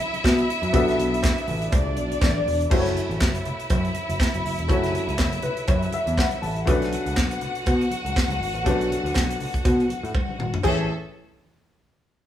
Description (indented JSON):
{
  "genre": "disco",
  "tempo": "121 BPM",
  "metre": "4/4",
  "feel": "swing 56% on 16ths",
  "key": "unclear",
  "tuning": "A4 = 438 Hz",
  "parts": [
    { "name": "rich studio violin section", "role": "second line", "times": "0.0-10.9 s", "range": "C#4 to F#5", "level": "-28 LUFS", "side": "equal", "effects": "none" },
    { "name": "warm baby grand piano", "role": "accompaniment", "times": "0.0-10.9 s", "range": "E3 to A5", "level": "-27 LUFS", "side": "left 2 dB", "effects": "none" },
    { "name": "tight funk drum kit", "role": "drums", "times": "0.1-10.8 s", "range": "crash cymbal, handclaps, hi-hat, kick drum, snare drum, toms", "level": "-24 LUFS", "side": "equal", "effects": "none" },
    { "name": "congas", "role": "percussion", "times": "0.1-10.9 s", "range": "none", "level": "-36 LUFS", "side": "left 1 dB", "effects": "none" },
    { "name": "overdriven picked electric bass", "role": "bass", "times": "0.2-10.9 s", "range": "E1 to B2", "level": "-26 LUFS", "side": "equal", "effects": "none" },
    { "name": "cowbell", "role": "percussion", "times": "0.2-10.9 s", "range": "none", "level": "-37 LUFS", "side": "right 2 dB", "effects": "none" }
  ],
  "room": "moderate studio reverb, RT60 1.0 s",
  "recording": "band playing live in one room, small room ambience",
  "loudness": "-20 LUFS",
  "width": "side -11 dB against mid",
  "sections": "0.0-2.7 A section; 2.7-10.6 B section; 10.6-12.3 C section",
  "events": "grand piano fill 5.2-6.7; drum fill 10.1-10.6",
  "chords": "0.0 Bm9; 2.7 F#m7; 6.7 Bm9; 10.6 Amaj7",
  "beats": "0.23 | 0.73 1.23 1.72 2.22 | 2.71 3.21 3.70 4.20 | 4.69 5.19 5.68 6.18 | 6.67 7.17 7.67 8.16 | 8.66 9.15 9.65 10.14 | 10.64"
}